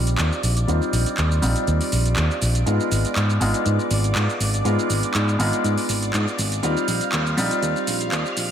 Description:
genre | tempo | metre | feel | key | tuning
filtered disco house | 121 BPM | 4/4 | swing 53% on 16ths | Eb major | A4 = 440 Hz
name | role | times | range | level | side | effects
bright concert grand piano | accompaniment | 0.0-8.5 s | G3 to F4 | -24 LUFS | equal | phaser, low-pass filter
string machine, full ensemble | sustained chords | 0.0-8.5 s | D5 to F6 | -31 LUFS | equal | ensemble chorus, low-pass filter
fingered electric bass | bass | 0.0-8.5 s | Ab1 to Ab2 | -21 LUFS | equal | low-pass filter
house drum kit | drums | 0.1-8.5 s | handclaps, hi-hat, shaker | -26 LUFS | right 1 dB | none
room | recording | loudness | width
light reverb, digital ambience | high-pass filter | -19 LUFS | side -9 dB against mid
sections
0.0-8.5 A section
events
build-up 0.0-8.5; filter sweep 0.0-8.5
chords
0.0 Eb69; 2.7 Abm6; 6.6 Eb69

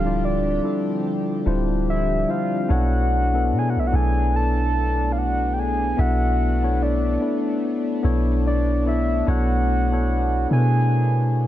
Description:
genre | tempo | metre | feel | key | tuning
contemporary R&B | 73 BPM | 4/4 | swing 58% on 16ths | unclear | A4 = 437 Hz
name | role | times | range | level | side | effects
soft octave-layered synth lead | melody | 0.0-11.5 s | D5 to A5 | -26 LUFS | right 1 dB | chorus
mellow tine electric piano | accompaniment | 0.0-11.5 s | G3 to E5 | -25 LUFS | left 4 dB | none
chorused pulse-width pad | sustained chords | 0.0-11.5 s | D3 to G4 | -30 LUFS | right 2 dB | none
soft 808-style bass | bass | 0.0-11.5 s | D1 to B2 | -21 LUFS | equal | none
room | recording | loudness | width
digital ambience | none | -19 LUFS | side -12 dB against mid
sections
0.0-11.5 A section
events
none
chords
0.0 Dm11; 2.7 Bm11

